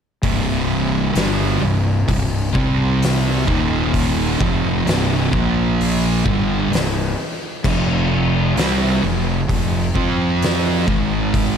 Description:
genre	stoner and doom metal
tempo	65 BPM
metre	4/4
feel	straight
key	C minor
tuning	A4 = 440 Hz
part	thick fuzz guitar	riff	0.2-11.6 s	C2 to F4	-22 LUFS	left 9 dB	distortion
part	thick fuzz guitar	riff	0.2-11.6 s	C2 to F4	-20 LUFS	right 10 dB	distortion
part	fuzz fingered electric bass	bass	0.2-11.6 s	C1 to F2	-23 LUFS	equal	overdrive
part	oversized low-tuned drum kit	drums	0.2-11.6 s	crash cymbal, hi-hat, kick drum, snare drum	-22 LUFS	left 1 dB	none
room	small room reverb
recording	none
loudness	-16 LUFS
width	side -7 dB against mid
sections	0.2-11.6 A section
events	none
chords	0.2 C5; 3.5 Eb5; 4.4 C5; 5.3 Bb5; 6.2 C5; 7.6 F5; 10.9 Ab5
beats	| 0.23 1.16 2.08 3.01 | 3.94 4.86 5.79 6.71 | 7.63 8.56 9.48 10.41 | 11.33

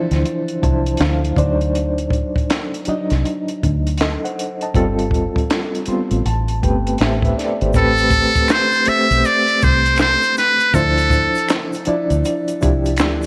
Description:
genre	R&B, neo-soul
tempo	80 BPM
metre	4/4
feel	swing 63% on 16ths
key	A minor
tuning	A4 = 441 Hz
part	reed electric piano	accompaniment	0.0-13.3 s	Eb3 to C6	-23 LUFS	equal	fast tremolo
part	deep dub fingered electric bass	bass	0.1-13.3 s	G1 to D2	-21 LUFS	equal	none
part	compact cocktail drum kit	drums	0.1-13.3 s	handclaps, hi-hat, kick drum, snare drum	-24 LUFS	equal	none
part	tube shaker and finger snaps	percussion	7.7-13.3 s	none	-35 LUFS	equal	none
part	trumpet with metal mute	melody	7.8-11.5 s	A4 to E5	-18 LUFS	equal	none
room	light reverb, small room ambience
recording	none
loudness	-17 LUFS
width	mono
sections	0.0-7.7 A section; 7.7-13.3 A section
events	reed electric piano fill 0.2-1.7, 5.5-7.7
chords	0.0 Dm9; 1.4 D7b9; 4.7 G9sus4; 6.2 Am9; 10.7 Dm9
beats	0.24 0.99 | 1.74 2.49 3.24 3.99 | 4.74 5.49 6.24 6.99 | 7.74 8.49 9.24 9.99 | 10.74 11.49 12.24 12.99

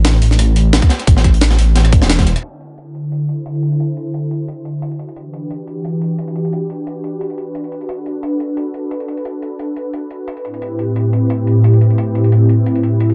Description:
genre	liquid drum and bass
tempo	176 BPM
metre	4/4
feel	swing 54% on 16ths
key	unclear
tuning	A4 = 440 Hz
part	swelling detuned saw bass	bass	0.0-2.3 s	E1 to A1	-14 LUFS	equal	tube saturation
part	crunchy breakbeat drum kit	drums	0.0-2.4 s	hi-hat, snare drum	-24 LUFS	equal	high-pass filter on hats, high-pass filter on snare, high-pass filter on room
part	jungle sampler-style drum kit	drums	0.0-13.1 s	crash cymbal, hi-hat, rim click, snare drum	-23 LUFS	equal	none
part	electronic kick drum	drums	0.8-2.2 s	none	-13 LUFS	equal	none
part	warm analog pad	sustained chords	2.4-13.1 s	A2 to C5	-18 LUFS	equal	chorus
room	light reverb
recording	low-pass filter, nothing above 10.8 kHz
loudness	-16 LUFS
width	mono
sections	0.0-2.4 A section; 2.4-13.1 B section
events	filter sweep on analog synth pad 2.4-13.1; filter sweep 2.4-13.1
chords	0.0 A5; 2.4 D7; 5.2 Em9; 7.9 Bm7; 10.4 Am9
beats	0.05 0.39 0.73 | 1.07 1.41 1.75 2.10 | 2.44 2.78 3.12 3.46 | 3.80 4.14 4.48 4.82 | 5.16 5.50 5.84 6.19 | 6.53 6.87 7.21 7.55 | 7.89 8.23 8.57 8.91 | 9.25 9.60 9.94 10.28 | 10.62 10.96 11.30 11.64 | 11.98 12.32 12.66 13.00

